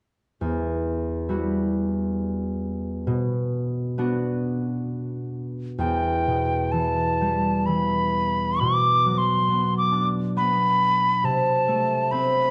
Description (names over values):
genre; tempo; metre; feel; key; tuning
celtic folk, Celtic slow air; 66 BPM; 3/4; uneven beats, rubato; E minor; A4 = 440 Hz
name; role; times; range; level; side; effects
concert harp; accompaniment; 0.4-12.5 s; E2 to F#4; -26 LUFS; equal; none
mellow mid whistle; melody; 5.8-12.5 s; G5 to D6; -24 LUFS; equal; none
room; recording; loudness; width
moderate recital hall reverb, RT60 1.4 s; dark, warm production; -24 LUFS; mono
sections
0.4-5.8 A section; 5.8-12.5 B section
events
none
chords
0.4 Emadd9; 3.1 Bm; 5.8 Em; 8.6 Bm; 11.2 Am/C